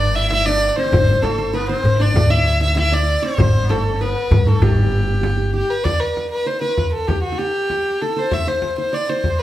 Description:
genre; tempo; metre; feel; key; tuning
Arabic maqam ensemble; 98 BPM; 4/4; straight; G maqam rast; A4 = 444 Hz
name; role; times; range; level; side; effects
warm violin; melody; 0.0-9.4 s; F#4-45c to E5; -20 LUFS; equal; plate reverb
qanun; second line; 0.0-9.4 s; G4 to E5; -27 LUFS; right 2 dB; none
sitar; second line; 0.0-5.5 s; G3 to E4; -27 LUFS; left 1 dB; none
upright bass; bass; 0.0-5.6 s; G1 to G2; -20 LUFS; equal; none
darbuka; percussion; 0.3-5.8 s; none; -19 LUFS; left 1 dB; none
frame drum; percussion; 0.3-9.4 s; none; -21 LUFS; left 1 dB; none
room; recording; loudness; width
wet small room reverb, RT60 0.5 s; heard from further back in the room; -15 LUFS; side -14 dB against mid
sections
0.0-5.8 A section; 5.8-9.4 B section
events
none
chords
none

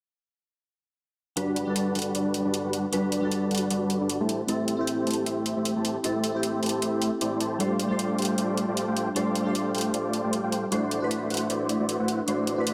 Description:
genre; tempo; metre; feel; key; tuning
future bass; 154 BPM; 4/4; swing 56% on 16ths, half-time; G major; A4 = 439 Hz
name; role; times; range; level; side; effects
glassy digital keys; accompaniment; 1.4-12.7 s; G3 to C5; -32 LUFS; equal; chorus, low-pass filter, delay
dense compressed supersaw; riff; 1.4-12.7 s; G3 to A5; -29 LUFS; equal; low-pass filter, delay
electronic hi-hat; drums; 1.4-12.7 s; none; -34 LUFS; equal; studio reverb
room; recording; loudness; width
light reverb, digital ambience; none; -27 LUFS; mono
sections
1.4-12.7 A section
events
filter sweep on synth keys 1.4-12.7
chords
1.4 Gmaj7; 4.3 C6; 7.6 F69; 10.7 D9

